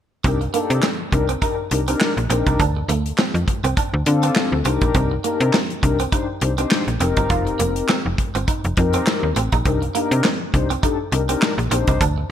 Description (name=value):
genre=early-eighties boogie funk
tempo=102 BPM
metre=4/4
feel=swing 56% on 16ths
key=C dorian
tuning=A4 = 439 Hz
part: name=mellow synth brass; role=accompaniment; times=0.2-12.0 s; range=C4 to C5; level=-23 LUFS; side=left 5 dB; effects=chorus
part: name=clean electric guitar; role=riff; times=0.2-12.2 s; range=A3 to F4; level=-26 LUFS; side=right 7 dB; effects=analog chorus
part: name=slap-like FM bass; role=bass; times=0.2-12.2 s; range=F1 to D3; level=-20 LUFS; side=equal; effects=none
part: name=modern studio drum kit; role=drums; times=0.2-12.2 s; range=handclaps, hi-hat, kick drum, snare drum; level=-22 LUFS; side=equal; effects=gated reverb
room=light reverb, small room reverb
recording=bright 1980s-style digital production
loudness=-17 LUFS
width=side -10 dB against mid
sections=0.2-12.3 A section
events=none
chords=0.2 Cm7; 2.6 Dm7; 4.7 Cm7; 7.0 F7sus4; 9.7 Cm7